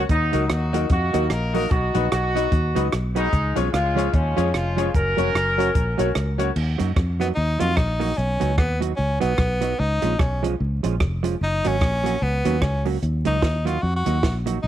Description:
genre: ska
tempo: 148 BPM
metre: 4/4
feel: swing 59% on 8ths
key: Eb minor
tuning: A4 = 442 Hz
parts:
  - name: hollow-body jazz guitar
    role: accompaniment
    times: 0.0-14.6 s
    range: F3 to Gb4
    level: -28 LUFS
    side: right 9 dB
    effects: none
  - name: bright upright piano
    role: stabs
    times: 0.0-6.5 s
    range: Db4 to Eb5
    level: -28 LUFS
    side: left 11 dB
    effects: none
  - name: fingered electric bass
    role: bass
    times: 0.0-14.7 s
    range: F1 to Gb2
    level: -23 LUFS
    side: equal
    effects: none
  - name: clear horn section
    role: melody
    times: 0.1-6.4 s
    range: F3 to Bb4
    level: -24 LUFS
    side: equal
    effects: none
  - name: compact cocktail drum kit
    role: drums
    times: 0.1-14.5 s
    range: crash cymbal, hi-hat, kick drum, rim click, snare drum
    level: -24 LUFS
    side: right 1 dB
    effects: none
  - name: edgy tenor saxophone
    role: melody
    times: 7.2-14.7 s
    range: Cb4 to Gb4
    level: -25 LUFS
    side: left 1 dB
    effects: none
room: light reverb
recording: 1960s-style stereo with parts hard left and right, vinyl crackle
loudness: -19 LUFS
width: side -11 dB against mid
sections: 0.0-6.6 A section; 6.6-14.7 B section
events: tenor saxophone solo 6.6-14.7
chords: 0.1 Ebm; 1.7 B; 3.3 Db; 4.9 Gb; 6.6 Ebm; 8.2 B; 9.8 Db; 11.4 Gb; 13.0 Ebm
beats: | 0.10 0.50 0.90 1.31 | 1.71 2.12 2.52 2.92 | 3.33 3.73 4.14 4.54 | 4.95 5.35 5.75 6.16 | 6.56 6.96 7.37 7.77 | 8.18 8.58 8.98 9.39 | 9.79 10.20 10.60 11.00 | 11.41 11.81 12.22 12.62 | 13.02 13.43 13.83 14.24 | 14.64

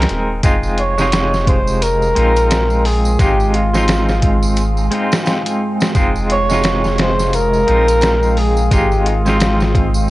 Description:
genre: trip hop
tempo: 87 BPM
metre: 4/4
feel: swing 59% on 16ths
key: F minor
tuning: A4 = 441 Hz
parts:
  - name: semi-hollow electric guitar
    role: accompaniment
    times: 0.0-10.1 s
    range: C3 to Bb4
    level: -20 LUFS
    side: equal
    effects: tremolo, tape echo
  - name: soft dub sub bass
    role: bass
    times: 0.0-10.1 s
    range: Eb1 to Bb1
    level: -18 LUFS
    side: equal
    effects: none
  - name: trip hop sampler-style drum kit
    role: drums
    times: 0.0-9.9 s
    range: hi-hat, kick drum, snare drum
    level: -18 LUFS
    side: equal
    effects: small room reverb
  - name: deep dark ambient pad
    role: sustained chords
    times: 1.9-10.1 s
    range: Ab3 to Eb6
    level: -24 LUFS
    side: right 1 dB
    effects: chorus, built-in reverb
  - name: tambourine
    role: percussion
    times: 0.4-10.1 s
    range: none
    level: -32 LUFS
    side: right 4 dB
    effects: none
  - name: wind-like tuned noise texture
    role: texture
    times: 1.6-10.1 s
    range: Ab3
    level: -29 LUFS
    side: right 1 dB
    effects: none
  - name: trumpet with bucket mute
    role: melody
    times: 0.8-10.1 s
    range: F4 to Db5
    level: -17 LUFS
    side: equal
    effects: vintage 12-bit sampler grit, tape echo
room: light reverb, digital ambience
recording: worn, warbling old tape, cassette tape, warbly pitch drift, nothing above 10.8 kHz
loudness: -12 LUFS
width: side -18 dB against mid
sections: 0.0-10.1 A section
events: none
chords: 0.4 Fm7; 3.2 Ab6; 6.0 Fm7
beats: | 0.43 1.12 1.81 2.50 | 3.19 3.88 4.57 5.26 | 5.95 6.64 7.33 8.02 | 8.71 9.40 10.09

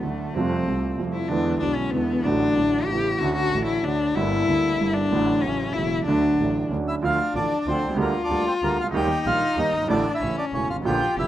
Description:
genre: tango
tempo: 189 BPM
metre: 3/4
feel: rubato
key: D major, D minor from 7.0 s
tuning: A4 = 442 Hz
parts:
  - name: warm cello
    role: second line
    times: 0.0-11.3 s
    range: A3 to G4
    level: -24 LUFS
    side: left 4 dB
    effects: none
  - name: warm grand piano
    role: accompaniment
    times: 0.0-11.3 s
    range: E1 to C#5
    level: -25 LUFS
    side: right 3 dB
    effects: none
  - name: clear double bass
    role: bass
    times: 0.0-11.3 s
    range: E1 to F2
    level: -32 LUFS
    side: right 1 dB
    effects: none
  - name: bandoneon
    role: melody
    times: 6.9-11.3 s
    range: Bb3 to G5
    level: -25 LUFS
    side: equal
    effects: none
room: light reverb, small room ambience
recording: rough home demo mix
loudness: -20 LUFS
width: side -12 dB against mid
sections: 0.0-7.0 A section; 7.0-11.3 B section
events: cello solo 0.0-7.0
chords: 0.4 Fadd9; 1.3 E7; 2.3 D/A; 2.9 Aadd9; 3.2 Dmaj7; 4.2 Gm6; 5.1 D/A; 5.4 A6; 6.1 Dmaj7; 7.0 Dm; 8.0 Gm/D; 8.9 Eb; 9.9 Asus4; 10.2 A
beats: 0.04 | 0.36 0.68 0.99 | 1.31 1.63 1.94 | 2.26 2.58 2.90 | 3.21 3.53 3.85 | 4.17 4.48 4.80 | 5.12 5.43 5.75 | 6.07 6.38 6.70 | 7.02 7.34 7.66 | 7.98 8.30 8.62 | 8.93 9.25 9.57 | 9.89 10.21 10.53 | 10.85 11.17

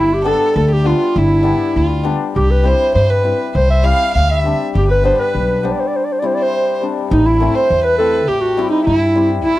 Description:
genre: klezmer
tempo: 101 BPM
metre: 2/4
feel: straight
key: C major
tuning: A4 = 441 Hz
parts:
  - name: breathy clarinet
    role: melody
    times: 0.0-9.6 s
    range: D#4 to F5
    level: -15 LUFS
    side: equal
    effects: none
  - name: warm violin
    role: second line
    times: 0.0-9.6 s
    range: D#4 to F5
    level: -23 LUFS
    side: right 4 dB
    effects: none
  - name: upright bass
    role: bass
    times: 0.0-9.6 s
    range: G1 to G2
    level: -16 LUFS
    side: equal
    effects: none
  - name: hammered dulcimer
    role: accompaniment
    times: 0.2-9.5 s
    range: G3 to E4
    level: -21 LUFS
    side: left 7 dB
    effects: none
room: small room ambience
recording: dry, close 1970s-style studio recording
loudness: -12 LUFS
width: side -16 dB against mid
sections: 0.0-7.1 A section; 7.1-9.6 B section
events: speeding up 0.0-9.6; break 5.9-7.1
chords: 0.0 G; 2.4 C; 4.7 G; 5.9 C; 7.1 Am; 8.3 C/A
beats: 0.55 | 1.16 1.76 | 2.36 2.96 | 3.55 4.15 | 4.75 5.34 | 5.93 6.52 | 7.11 7.70 | 8.28 8.87 | 9.45

